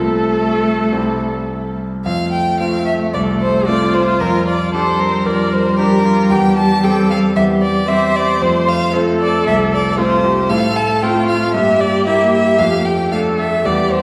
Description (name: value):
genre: quick classical-period movement for piano quartet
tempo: 114 BPM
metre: 4/4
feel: rubato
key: F major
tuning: A4 = 436 Hz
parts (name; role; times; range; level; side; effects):
- rich violin; melody; 0.0-14.0 s; A4 to A5; -20 LUFS; equal; none
- rich cello; second line; 0.0-14.0 s; G3 to Bb3; -22 LUFS; equal; none
- bright concert grand piano; accompaniment; 0.0-14.0 s; C2 to A4; -21 LUFS; equal; none
- warm viola; accompaniment; 0.0-14.0 s; F4 to C5; -22 LUFS; equal; none
room: wet scoring stage reverb, RT60 1.6 s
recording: heard from further back in the room, vinyl crackle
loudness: -15 LUFS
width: mono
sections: 0.0-2.1 A section; 2.1-14.0 B section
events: none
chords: 0.0 F/C; 0.9 C; 2.1 F; 4.2 Gm7/F; 6.3 C/E; 8.4 F; 10.5 F/A; 11.5 Edim/G; 12.6 Dm/F